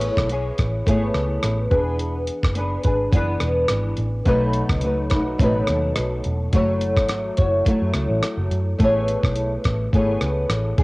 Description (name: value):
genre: indie pop, bedroom pop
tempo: 106 BPM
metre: 4/4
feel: swing 55% on 16ths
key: A major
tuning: A4 = 440 Hz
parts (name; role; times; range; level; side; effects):
- flamenco guitar; accompaniment; 0.0-10.8 s; B2 to C#5; -22 LUFS; equal; ensemble chorus, warbly pitch drift, cassette tape
- vintage muted picked electric bass; bass; 0.0-10.8 s; E1 to F#2; -24 LUFS; equal; none
- dusty soul sampler-style drum kit; drums; 0.0-10.8 s; hi-hat, kick drum, rim click; -21 LUFS; equal; cassette tape
room: light reverb, digital ambience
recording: home recording on cassette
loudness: -18 LUFS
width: side -23 dB against mid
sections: 0.0-10.8 A section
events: none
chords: 0.0 Amaj9; 1.7 E7; 4.3 B7; 6.5 F#m7; 8.8 Amaj9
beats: 0.30 0.87 1.43 | 2.00 2.56 3.13 3.70 | 4.26 4.83 5.40 5.96 | 6.53 7.09 7.66 8.23 | 8.80 9.36 9.93 10.50